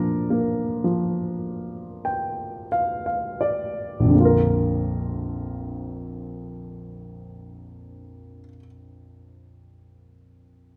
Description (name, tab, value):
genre	classical, lyrical solo piano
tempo	42-58 BPM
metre	4/4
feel	rubato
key	Bb major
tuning	A4 = 440 Hz
part	dark grand piano	solo	0.0-10.8 s	Bb1 to G5	-25 LUFS	equal	none
room	moderate scoring stage reverb, RT60 1.9 s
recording	none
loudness	-24 LUFS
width	mono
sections	0.0-4.1 A section; 4.1-9.5 B section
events	slowing down 0.0-4.1; grand piano fill 1.4-4.1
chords	0.0 Bb